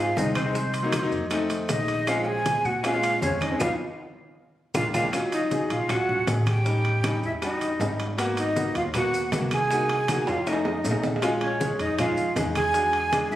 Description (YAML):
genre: Afro-Cuban jazz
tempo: 157 BPM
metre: 4/4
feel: straight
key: Bb minor, Eb minor from 5.1 s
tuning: A4 = 440 Hz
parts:
  - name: breathy alto saxophone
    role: melody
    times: 0.0-13.4 s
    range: C4 to Ab4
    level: -28 LUFS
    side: right 2 dB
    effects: none
  - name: breathy bright jazz flute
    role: second line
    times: 0.0-13.4 s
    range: C5 to Ab5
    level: -29 LUFS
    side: left 1 dB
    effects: none
  - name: bright upright piano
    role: accompaniment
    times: 0.0-13.4 s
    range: Gb3 to Ab4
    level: -29 LUFS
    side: left 2 dB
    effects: none
  - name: upright bass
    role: bass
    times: 0.0-13.4 s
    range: Ab1 to Bb2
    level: -30 LUFS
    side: equal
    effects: none
  - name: bongos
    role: percussion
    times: 0.2-13.4 s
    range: none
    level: -37 LUFS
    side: left 3 dB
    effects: none
  - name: congas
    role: percussion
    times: 0.2-13.4 s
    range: none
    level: -34 LUFS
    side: left 1 dB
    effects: none
  - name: maracas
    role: percussion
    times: 0.2-13.4 s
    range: none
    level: -41 LUFS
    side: right 1 dB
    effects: none
  - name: timbales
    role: percussion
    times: 0.2-13.3 s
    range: none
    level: -34 LUFS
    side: right 3 dB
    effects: none
  - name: claves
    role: percussion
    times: 0.4-13.3 s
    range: none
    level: -40 LUFS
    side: equal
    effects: none
room: moderate large studio reverb, RT60 1.4 s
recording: recorded on a phone in the room, club reverb, compression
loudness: -22 LUFS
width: side -13 dB against mid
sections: 0.0-5.1 A section; 5.1-13.4 B section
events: drum fill 3.6-5.1, 10.3-11.2; band accent 3.6-5.1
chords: 0.0 Fm7; 0.6 Cm7b5; 1.3 F7; 2.1 Bbm7; 3.6 Ebsus2/F; 4.4 Bb7; 5.1 Ebm7; 6.7 A7#11; 8.2 Abm9; 9.7 Cm7b5; 10.5 F7b13; 11.2 Bbm7; 12.7 E9